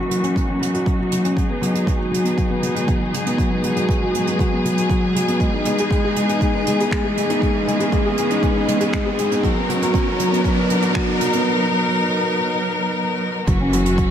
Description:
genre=piano and strings electronica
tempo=119 BPM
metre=4/4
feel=straight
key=G# minor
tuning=A4 = 435 Hz
part: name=clear studio string section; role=sustained chords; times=0.0-14.1 s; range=E3 to A#4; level=-22 LUFS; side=equal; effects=sidechain pumping, low-pass filter
part: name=felt-muted upright piano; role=riff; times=0.0-14.1 s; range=F#3 to G#4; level=-20 LUFS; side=left 1 dB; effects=ping-pong delay
part: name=riser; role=sound effects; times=1.5-11.5 s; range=none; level=-29 LUFS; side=right 2 dB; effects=none
part: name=jazz brush drum kit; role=drums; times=0.1-14.1 s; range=finger snaps, hi-hat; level=-30 LUFS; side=right 4 dB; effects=none
part: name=electronic kick drum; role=drums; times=0.4-14.1 s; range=none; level=-22 LUFS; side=right 1 dB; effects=overdrive
part: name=dark detuned saw bass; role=bass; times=13.5-14.1 s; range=F#1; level=-22 LUFS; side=right 1 dB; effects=tube saturation, sidechain pumping
room=wet recital hall reverb, RT60 1.4 s, small room ambience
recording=none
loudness=-17 LUFS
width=side -9 dB against mid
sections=0.0-13.5 A section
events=build-up 0.0-13.5; riser 1.5-11.5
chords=0.0 F#7; 1.4 G#m7; 5.4 Emaj7; 9.4 Bmaj7; 13.5 F#7

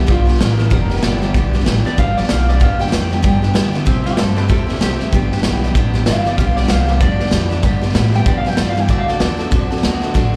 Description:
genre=rockabilly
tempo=191 BPM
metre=4/4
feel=swing 60% on 8ths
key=G mixolydian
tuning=A4 = 440 Hz
part: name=electric guitar through a small old amp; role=melody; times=0.0-10.0 s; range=F4 to G5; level=-26 LUFS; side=equal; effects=warbly pitch drift, slapback echo, analog delay
part: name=picked steel-string acoustic guitar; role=accompaniment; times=0.0-10.4 s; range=G2 to A4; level=-25 LUFS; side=equal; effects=slapback echo
part: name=electric guitar through a small old amp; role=riff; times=0.0-10.3 s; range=G2 to C4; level=-27 LUFS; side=equal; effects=none
part: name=upright bass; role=bass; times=0.0-10.4 s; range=F1 to D3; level=-20 LUFS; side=equal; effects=none
part: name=raw garage drum kit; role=drums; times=0.1-10.2 s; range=hi-hat, kick drum, snare drum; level=-20 LUFS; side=equal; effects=none
room=little or no reverb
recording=live gig heard through the venue's PA, club reverb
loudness=-16 LUFS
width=mono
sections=0.0-10.4 A section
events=clean electric guitar solo 0.0-10.4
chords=0.0 G; 3.9 C; 5.1 G; 8.9 D

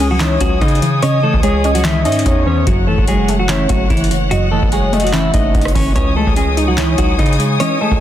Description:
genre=hip hop, trap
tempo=146 BPM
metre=4/4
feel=half-time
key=C# minor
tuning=A4 = 437 Hz
part: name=clean electric guitar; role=melody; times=0.0-8.0 s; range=E3 to D#5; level=-18 LUFS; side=equal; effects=low-pass filter, ping-pong delay
part: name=warbly dusty pluck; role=accompaniment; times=0.0-8.0 s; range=F#2 to E4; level=-20 LUFS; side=right 1 dB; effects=chorus, low-pass filter
part: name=warm chamber string section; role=sustained chords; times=0.0-8.0 s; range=C#5 to D#6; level=-22 LUFS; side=left 2 dB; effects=none
part: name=distorted 808-style bass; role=bass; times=0.0-8.0 s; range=F#1 to C#3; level=-18 LUFS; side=equal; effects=distortion
part: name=booming analog drum machine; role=drums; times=0.0-8.0 s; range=handclaps, hi-hat, kick drum, rim click, snare drum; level=-17 LUFS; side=equal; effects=none
part: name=warm velvety synth lead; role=second line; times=0.2-8.0 s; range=B#4 to E5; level=-23 LUFS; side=left 1 dB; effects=chorus, ping-pong delay
room=little or no reverb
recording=dense, heavily limited modern master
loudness=-12 LUFS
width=side -11 dB against mid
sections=0.0-8.0 A section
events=none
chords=0.0 C#madd9; 2.7 F#m7; 6.0 C#madd9

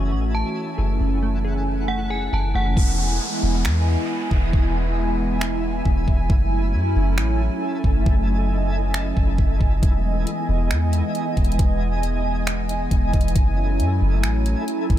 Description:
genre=hip hop, atmospheric cloud-rap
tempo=136 BPM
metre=4/4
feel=half-time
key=E major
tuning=A4 = 440 Hz
part: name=hollow soft pad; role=sustained chords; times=0.0-15.0 s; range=E3 to G#5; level=-25 LUFS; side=right 1 dB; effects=chorus, sidechain pumping
part: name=glassy wavetable pluck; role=arpeggios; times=0.0-2.8 s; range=A3 to F#5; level=-34 LUFS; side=right 1 dB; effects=chorus, low-pass filter, ping-pong delay
part: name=soft 808-style bass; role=bass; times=0.0-15.0 s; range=E1 to F#2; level=-21 LUFS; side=equal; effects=none
part: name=twinkling granular texture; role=texture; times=0.0-15.0 s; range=E4 to G#5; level=-33 LUFS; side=left 1 dB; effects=built-in reverb
part: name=metallic FM bell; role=melody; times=0.3-2.8 s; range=F#5 to A5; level=-31 LUFS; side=right 1 dB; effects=chorus, low-pass filter, ping-pong delay
part: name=smooth R&B drum kit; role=drums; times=2.8-15.0 s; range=finger snaps, hi-hat, kick drum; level=-21 LUFS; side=equal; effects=none
part: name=downlifter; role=sound effects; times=2.8-6.3 s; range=none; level=-31 LUFS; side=equal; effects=none
room=little or no reverb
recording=none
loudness=-18 LUFS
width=side -12 dB against mid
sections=0.0-2.8 A section; 2.8-15.0 B section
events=hi-hats muted 2.8-9.8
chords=0.0 F#m9; 2.8 Emaj7; 6.3 F#m9; 9.8 Emaj7; 13.4 F#m9

